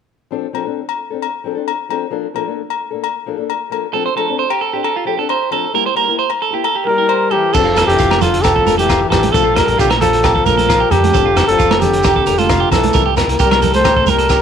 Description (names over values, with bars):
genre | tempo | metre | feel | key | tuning
highlife guitar band | 133 BPM | 4/4 | straight | F major | A4 = 441 Hz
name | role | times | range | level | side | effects
fingerpicked old ladder-braced acoustic guitar | accompaniment | 0.3-14.2 s | F3 to A4 | -24 LUFS | left 12 dB | none
agogo bells | percussion | 0.5-14.4 s | none | -23 LUFS | left 10 dB | none
electric guitar at the edge of break-up | arpeggios | 3.9-14.4 s | F4 to C5 | -18 LUFS | right 10 dB | tape echo
breathy trumpet | melody | 6.9-14.4 s | F4 to C5 | -14 LUFS | equal | tape echo
warm tenor saxophone | second line | 6.9-14.4 s | D3 to A3 | -21 LUFS | left 10 dB | none
deep dub fingered electric bass | bass | 7.5-14.4 s | F1 to F2 | -20 LUFS | equal | none
crunchy breakbeat drum kit | drums | 7.5-14.4 s | crash cymbal, hi-hat, kick drum, rim click | -19 LUFS | equal | none
shekere | percussion | 7.5-14.4 s | none | -25 LUFS | right 5 dB | none
congas | percussion | 8.1-14.2 s | none | -23 LUFS | right 11 dB | none
room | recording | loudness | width
moderate plate reverb, RT60 1.8 s | 1960s-style stereo with parts hard left and right | -12 LUFS | side -8 dB against mid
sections
0.3-7.5 A section; 7.5-14.4 B section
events
none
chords
0.3 F6; 2.1 Bbmaj7; 3.9 F6; 5.7 C7; 7.5 F6; 9.3 Bbmaj7; 11.1 F6; 12.9 C7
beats
| 0.33 0.78 1.23 1.68 | 2.14 2.59 3.04 3.49 | 3.94 4.39 4.84 5.29 | 5.75 6.20 6.64 7.09 | 7.54 7.99 8.44 8.89 | 9.34 9.79 10.24 10.69 | 11.14 11.59 12.04 12.49 | 12.94 13.39 13.84 14.29